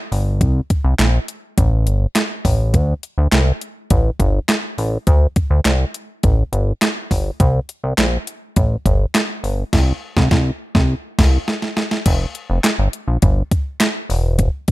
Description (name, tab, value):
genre	early-eighties boogie funk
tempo	103 BPM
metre	4/4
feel	straight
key	unclear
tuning	A4 = 440 Hz
part	chorused synth bass	bass	0.1-14.5 s	E1 to D2	-16 LUFS	equal	none
part	crisp 8-bit digital drum machine	drums	0.1-14.7 s	crash cymbal, handclaps, hi-hat, kick drum, snare drum	-17 LUFS	equal	overdrive
room	digital ambience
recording	rough home demo mix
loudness	-15 LUFS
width	side -18 dB against mid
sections	0.0-12.1 A section; 12.1-14.7 B section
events	band accent 9.7-12.1; drum fill 10.9-12.1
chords	none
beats	| 0.41 0.99 1.57 2.16 | 2.74 3.32 3.90 4.49 | 5.07 5.65 6.23 6.82 | 7.40 7.98 8.56 9.15 | 9.73 10.31 10.89 11.48 | 12.06 12.64 13.22 13.81 | 14.39